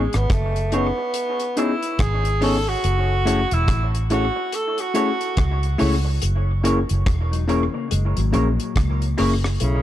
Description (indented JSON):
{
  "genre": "lovers rock reggae",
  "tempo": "71 BPM",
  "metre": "4/4",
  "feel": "swing 60% on 16ths",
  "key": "F# dorian",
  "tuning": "A4 = 439 Hz",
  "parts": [
    { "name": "warm tenor saxophone", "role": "melody", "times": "0.0-9.8 s", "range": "C#3 to A4", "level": "-25 LUFS", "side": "right 1 dB", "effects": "tape echo" },
    { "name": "bell-like tine electric piano", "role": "accompaniment", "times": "0.0-9.3 s", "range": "A3 to G#4", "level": "-25 LUFS", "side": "left 3 dB", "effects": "none" },
    { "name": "vintage muted fingered electric bass", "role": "bass", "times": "0.0-9.8 s", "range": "E1 to C#2", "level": "-21 LUFS", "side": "equal", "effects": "none" },
    { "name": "deep reggae drum kit", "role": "drums", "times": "0.1-9.8 s", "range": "hi-hat, kick drum, rim click", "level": "-25 LUFS", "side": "equal", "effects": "tape echo" },
    { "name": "electric guitar through a small old amp", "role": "stabs", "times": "0.7-9.3 s", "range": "D#4 to C#5", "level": "-29 LUFS", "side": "right 2 dB", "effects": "wide subtle chorus, tape echo" },
    { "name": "mellow electric guitar", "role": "arpeggios", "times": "7.3-9.4 s", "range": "A#2 to D#4", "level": "-29 LUFS", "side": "left 9 dB", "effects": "tape echo" },
    { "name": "warm horn section", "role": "second line", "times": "9.6-9.8 s", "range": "A3 to E4", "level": "-29 LUFS", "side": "left 4 dB", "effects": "none" }
  ],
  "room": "light reverb, small room ambience",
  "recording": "dark, warm production",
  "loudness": "-18 LUFS",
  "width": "side -12 dB against mid",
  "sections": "0.0-9.6 A section",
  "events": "tenor saxophone solo 0.0-9.6",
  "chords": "0.0 Amaj9#11; 2.8 F#m7; 6.2 F#7",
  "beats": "0.30 1.14 1.99 | 2.84 3.68 4.53 5.37 | 6.22 7.07 7.91 8.76 | 9.61"
}